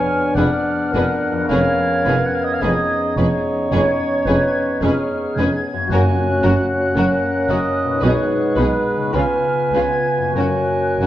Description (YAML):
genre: classical, slow romantic movement for symphony orchestra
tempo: 46-58 BPM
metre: 4/4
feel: rubato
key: unclear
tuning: A4 = 440 Hz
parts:
  - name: large flute ensemble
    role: second line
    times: 0.0-11.1 s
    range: E#6 to G#6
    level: -28 LUFS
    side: equal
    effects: none
  - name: mellow cor anglais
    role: second line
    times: 0.0-11.1 s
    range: B4 to G#5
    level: -23 LUFS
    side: right 2 dB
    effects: none
  - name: warm clarinet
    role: second line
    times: 0.0-11.1 s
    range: F#4 to D5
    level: -26 LUFS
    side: right 1 dB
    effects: none
  - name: mellow bassoon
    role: accompaniment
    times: 0.0-11.1 s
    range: B3 to D#4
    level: -24 LUFS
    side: right 1 dB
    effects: none
  - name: mellow French horn section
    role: sustained chords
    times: 0.0-11.1 s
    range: G#3 to F#4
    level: -25 LUFS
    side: left 2 dB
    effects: none
  - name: concert harp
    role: arpeggios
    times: 0.0-11.1 s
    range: F2 to Ab4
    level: -27 LUFS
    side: left 6 dB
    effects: none
  - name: warm symphonic violin section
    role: melody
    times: 0.4-11.1 s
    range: A#4 to Cb5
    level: -30 LUFS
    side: left 4 dB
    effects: none
  - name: clear symphonic violin section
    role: second line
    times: 0.4-11.1 s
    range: E#4 to Ab4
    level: -30 LUFS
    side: left 3 dB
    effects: none
  - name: rich symphonic viola section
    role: accompaniment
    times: 0.4-11.1 s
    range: C#4 to D#4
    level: -26 LUFS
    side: equal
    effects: none
  - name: clear symphonic double bass section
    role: bass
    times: 0.4-11.1 s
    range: F1 to C#2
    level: -24 LUFS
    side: right 2 dB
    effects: none
  - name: rich symphonic cello section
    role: bass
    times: 0.4-11.1 s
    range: F2 to C#3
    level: -23 LUFS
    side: right 1 dB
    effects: none
  - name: timpani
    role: percussion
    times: 5.9-7.5 s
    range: F#2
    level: -26 LUFS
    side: left 1 dB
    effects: none
room: moderate recital hall reverb, RT60 1.5 s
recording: worn, warbling old tape, cassette tape, warbly pitch drift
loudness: -16 LUFS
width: side -13 dB against mid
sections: 0.0-11.1 A section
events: none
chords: 0.0 Fdim7; 1.5 C#7/E#; 5.9 F#; 8.0 G#m/B; 9.1 C#7; 10.4 F#